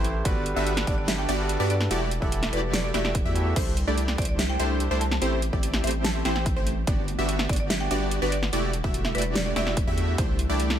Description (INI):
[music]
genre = future bass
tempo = 145 BPM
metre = 4/4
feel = half-time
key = unclear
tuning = A4 = 440 Hz
[part]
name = barky tine electric piano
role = accompaniment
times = 0.0-3.6 s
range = E3 to B5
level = -32 LUFS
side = right 2 dB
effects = sidechain pumping, tape echo
[part]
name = wide unison pluck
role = arpeggios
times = 0.0-10.8 s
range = C5 to E5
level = -37 LUFS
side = equal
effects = sidechain pumping
[part]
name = supersaw stab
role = riff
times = 0.0-10.8 s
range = A3 to E5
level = -29 LUFS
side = equal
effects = sidechain pumping
[part]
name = saturated sub bass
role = bass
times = 0.0-10.8 s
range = E1 to G2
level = -28 LUFS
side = equal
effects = sidechain pumping
[part]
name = dubstep drum kit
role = drums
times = 0.0-10.8 s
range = crash cymbal, hi-hat, snare drum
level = -29 LUFS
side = equal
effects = none
[part]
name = electronic kick drum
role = drums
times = 0.3-10.3 s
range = none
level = -27 LUFS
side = equal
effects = none
[part]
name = buzzing marimba with hard mallets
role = melody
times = 0.9-9.7 s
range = B4 to A5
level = -34 LUFS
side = equal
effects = sidechain pumping, ping-pong delay
[part]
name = ethereal airy pad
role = sustained chords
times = 4.3-10.8 s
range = D3 to F#5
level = -37 LUFS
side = right 1 dB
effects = ensemble chorus, built-in reverb, sidechain pumping
[sound]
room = little or no reverb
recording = none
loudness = -23 LUFS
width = side -10 dB against mid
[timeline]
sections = 0.0-3.6 A section; 3.6-10.8 A section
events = drop 0.0-3.6, 3.6-10.8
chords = 0.3 Gmaj7; 1.9 Em11; 3.6 C69; 5.2 Am7; 6.9 Gmaj7; 8.5 Em11; 10.2 C69